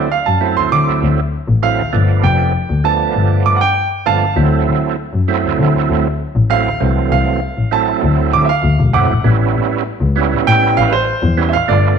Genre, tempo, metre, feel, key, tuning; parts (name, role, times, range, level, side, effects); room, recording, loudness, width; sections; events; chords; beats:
blues; 98 BPM; 4/4; straight; A4 = 440 Hz
bright upright piano; second line; 0.0-12.0 s; B4 to D6; -16 LUFS; right 5 dB; slapback echo
overdriven tonewheel organ; accompaniment; 0.0-12.0 s; E3 to F4; -18 LUFS; right 9 dB; slow rotary speaker, chorus vibrato
dark double bass; bass; 0.0-11.8 s; E1 to D3; -15 LUFS; left 3 dB
moderate echo chamber reverb, RT60 1.4 s, small room ambience; 1960s-style stereo; -12 LUFS; side -6 dB against mid
0.0-12.0 A section
upright piano solo 0.0-12.0
0.0 D7; 1.9 G7; 4.4 D7; 9.2 A7
0.10 0.71 1.32 | 1.93 2.54 3.15 3.76 | 4.37 4.98 5.58 6.19 | 6.80 7.41 8.02 8.63 | 9.24 9.85 10.46 11.07 | 11.68